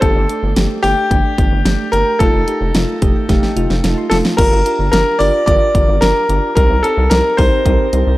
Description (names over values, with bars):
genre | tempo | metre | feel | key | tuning
synth-pop | 110 BPM | 4/4 | straight | G minor | A4 = 440 Hz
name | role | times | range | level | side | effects
clear grand piano | melody | 0.0-8.2 s | G4 to D5 | -16 LUFS | equal | shimmer reverb
soft electric-piano-like synth keys | accompaniment | 0.0-8.1 s | A3 to C6 | -20 LUFS | right 1 dB | chorus, shimmer reverb
rubbery square bass | bass | 0.0-8.2 s | F1 to C2 | -17 LUFS | equal | none
pop drum kit | drums | 0.0-8.1 s | crash cymbal, hi-hat, kick drum, snare drum | -16 LUFS | equal | none
room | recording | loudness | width
light reverb | dry, gritty hardware recording | -11 LUFS | side -17 dB against mid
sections
0.0-4.4 A section; 4.4-8.2 B section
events
synth keys fill 2.7-4.4; drum fill 3.3-4.4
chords
0.0 Gsus2; 2.2 F7; 4.4 Gm7; 6.6 Cm7